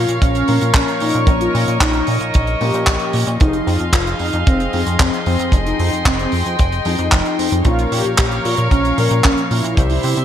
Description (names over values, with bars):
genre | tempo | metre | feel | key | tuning
italo disco | 113 BPM | 4/4 | straight | unclear | A4 = 440 Hz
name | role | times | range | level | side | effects
mellow synth brass | melody | 0.0-10.2 s | C4 to G4 | -21 LUFS | equal | chorus, digital delay
rich chamber string section | sustained chords | 0.0-10.2 s | G4 to Db6 | -22 LUFS | equal | vintage 12-bit sampler grit
dark grand piano | stabs | 0.0-10.2 s | Bb2 to C5 | -25 LUFS | left 5 dB | lush chorus
chorused synth bass | bass | 0.0-10.2 s | F1 to C3 | -20 LUFS | equal | none
tight funk drum kit | drums | 0.1-10.2 s | handclaps, hi-hat | -22 LUFS | right 1 dB | gated reverb
kick drum | drums | 0.2-9.9 s | none | -14 LUFS | equal | none
room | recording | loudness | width
moderate lush hall reverb, RT60 1.8 s, studio reverb | bright 1980s-style digital production | -14 LUFS | side -10 dB against mid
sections
0.0-10.2 A section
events
none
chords
0.0 Bbm; 3.4 Fm7; 7.7 Bbm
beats
0.22 0.75 | 1.28 1.81 2.34 2.87 | 3.40 3.94 4.47 5.00 | 5.53 6.06 6.59 7.12 | 7.65 8.18 8.71 9.24 | 9.78